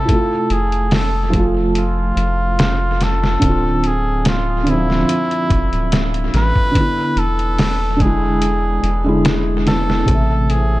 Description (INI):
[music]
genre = trip hop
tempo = 72 BPM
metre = 4/4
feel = swing 53% on 16ths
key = unclear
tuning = A4 = 440 Hz
[part]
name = trumpet with cup mute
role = melody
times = 0.0-10.8 s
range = E4 to B4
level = -21 LUFS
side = equal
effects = tape echo
[part]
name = felt-muted upright piano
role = accompaniment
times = 0.0-10.8 s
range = C3 to E5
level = -19 LUFS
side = right 1 dB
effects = harmonic tremolo, tape echo
[part]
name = trip hop sampler-style drum kit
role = drums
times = 0.1-10.7 s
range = hi-hat, kick drum, snare drum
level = -19 LUFS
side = equal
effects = tape echo
[part]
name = soft dub sub bass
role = bass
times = 0.5-10.8 s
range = D1 to A1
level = -19 LUFS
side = equal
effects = none
[sound]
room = small room ambience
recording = echo-heavy mix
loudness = -14 LUFS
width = side -17 dB against mid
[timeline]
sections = 0.0-10.8 A section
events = none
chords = 0.1 Fmaj7; 3.4 Dm7; 6.8 E7; 10.1 Am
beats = | 0.08 0.92 1.75 2.58 | 3.42 4.25 5.08 5.92 | 6.75 7.58 8.42 9.25 | 10.08